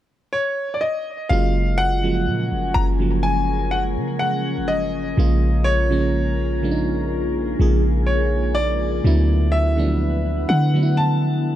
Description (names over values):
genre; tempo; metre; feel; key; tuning
contemporary R&B; 62 BPM; 4/4; straight; F# major; A4 = 440 Hz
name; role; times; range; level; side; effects
bright baby grand piano; melody; 0.3-11.6 s; C#5 to A#5; -24 LUFS; left 1 dB; tape echo
FM electric piano; accompaniment; 1.3-11.6 s; C#3 to G#4; -23 LUFS; right 3 dB; chorus
glassy FM pad; sustained chords; 2.2-11.6 s; D3 to A#5; -28 LUFS; left 3 dB; ensemble chorus, built-in reverb
clean 808-style bass; bass; 1.3-11.6 s; F#1 to D3; -20 LUFS; equal; none
celesta; texture; 1.3-4.7 s; D#5; -38 LUFS; left 9 dB; none
room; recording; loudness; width
studio reverb; dark, warm production; -18 LUFS; side -12 dB against mid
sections
0.0-1.3 A section; 1.3-11.6 B section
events
none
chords
0.0 N.C.; 1.3 F#maj9; 5.2 A#m7; 9.0 D69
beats
0.34 | 1.30 2.27 3.24 4.21 | 5.18 6.14 7.11 8.08 | 9.05 10.02 10.98